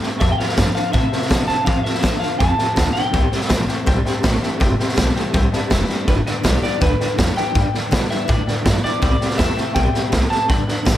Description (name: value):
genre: rockabilly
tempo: 163 BPM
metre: 4/4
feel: straight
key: C major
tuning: A4 = 442 Hz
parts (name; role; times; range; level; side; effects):
- bright upright piano; accompaniment; 0.0-11.0 s; B4 to A5; -31 LUFS; left 5 dB; none
- picked steel-string acoustic guitar; accompaniment; 0.0-11.0 s; F2 to G4; -27 LUFS; left 2 dB; none
- electric guitar through a small old amp; riff; 0.0-11.0 s; F2 to A3; -25 LUFS; right 1 dB; tremolo
- upright bass; bass; 0.0-11.0 s; F1 to C3; -22 LUFS; equal; none
- raw garage drum kit; drums; 0.0-11.0 s; hi-hat, kick drum, snare drum; -19 LUFS; equal; none
- electric guitar through a small old amp; melody; 0.2-11.0 s; B4 to B5; -23 LUFS; left 1 dB; vibrato effect, tape echo
room: light reverb, small room ambience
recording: none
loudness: -16 LUFS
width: side -12 dB against mid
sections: 0.0-11.0 A section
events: none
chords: 0.2 F; 3.1 C; 6.1 G; 9.0 C